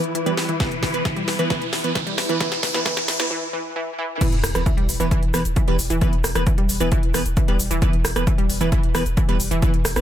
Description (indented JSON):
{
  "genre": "driving peak-time techno",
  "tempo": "133 BPM",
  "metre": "4/4",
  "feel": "straight",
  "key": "unclear",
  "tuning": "A4 = 440 Hz",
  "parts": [
    { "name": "swarming drone", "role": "drone", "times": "0.0-3.3 s", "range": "E3 to E4", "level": "-31 LUFS", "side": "left 1 dB", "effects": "built-in reverb, sidechain pumping" },
    { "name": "techno drum kit", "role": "drums", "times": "0.0-10.0 s", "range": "crash cymbal, hi-hat, rim click, shaker, snare drum", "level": "-26 LUFS", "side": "equal", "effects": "high-pass filter on hats, high-pass filter on snare, high-pass filter on cymbals, high-pass filter on perc, high-pass filter on room" },
    { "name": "riser and sub drop", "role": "sound effects", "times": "0.0-6.0 s", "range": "none", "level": "-29 LUFS", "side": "right 1 dB", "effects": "none" },
    { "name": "warbly tape-like pad", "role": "texture", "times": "0.0-3.3 s", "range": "E4 to E5", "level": "-32 LUFS", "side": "left 2 dB", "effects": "chorus, built-in reverb, sidechain pumping" },
    { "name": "wide unison pluck", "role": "riff", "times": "0.1-9.7 s", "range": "E3 to G3", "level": "-27 LUFS", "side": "equal", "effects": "overdrive, cassette tape, sidechain pumping, digital delay" },
    { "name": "wavetable chord stab", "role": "stabs", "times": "0.3-10.0 s", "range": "E3 to B4", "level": "-27 LUFS", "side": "right 2 dB", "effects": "sidechain pumping, ping-pong delay" },
    { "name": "electronic kick drum", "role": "drums", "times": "0.6-9.7 s", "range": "none", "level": "-21 LUFS", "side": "equal", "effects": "none" },
    { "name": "saturated sub bass", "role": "bass", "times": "4.3-10.0 s", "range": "E1", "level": "-26 LUFS", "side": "equal", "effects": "overdrive, sidechain pumping, low-pass filter" }
  ],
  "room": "little or no reverb",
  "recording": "high-pass filter",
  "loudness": "-18 LUFS",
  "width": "side -11 dB against mid",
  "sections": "0.0-4.2 A section; 4.2-10.0 B section",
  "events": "build-up 0.0-4.2; drum fill 0.0-3.3; riser 0.0-3.3; filter sweep on synth arpeggio sound 0.0-4.2; filter sweep 0.0-4.2; break 3.3-4.2; drop 4.2-10.0; impact 4.2-6.0",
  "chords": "0.0 E5"
}